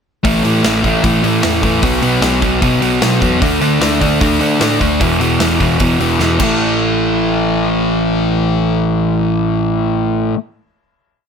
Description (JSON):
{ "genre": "punk rock", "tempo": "151 BPM", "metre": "4/4", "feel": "straight", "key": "unclear", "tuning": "A4 = 443 Hz", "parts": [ { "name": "crunchy overdriven guitar", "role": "riff", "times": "0.2-10.4 s", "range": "E2 to D4", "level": "-16 LUFS", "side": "right 9 dB", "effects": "none" }, { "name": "sludgy distorted guitar", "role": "riff", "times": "0.2-10.4 s", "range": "E2 to D4", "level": "-16 LUFS", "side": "left 10 dB", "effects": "overdrive" }, { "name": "overdriven picked electric bass", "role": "bass", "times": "0.2-10.3 s", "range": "E1 to D3", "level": "-20 LUFS", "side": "equal", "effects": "none" }, { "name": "big rock drum kit", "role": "drums", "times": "0.2-6.5 s", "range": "crash cymbal, hi-hat, kick drum, snare drum", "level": "-19 LUFS", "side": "equal", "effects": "none" } ], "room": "light reverb", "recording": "none", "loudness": "-12 LUFS", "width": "side -6 dB against mid", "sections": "0.2-6.6 verse; 6.6-9.8 final hit", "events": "drum fill 6.2-6.6", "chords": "0.2 A5; 1.8 B5; 3.4 D5; 5.0 E5; 6.4 A5" }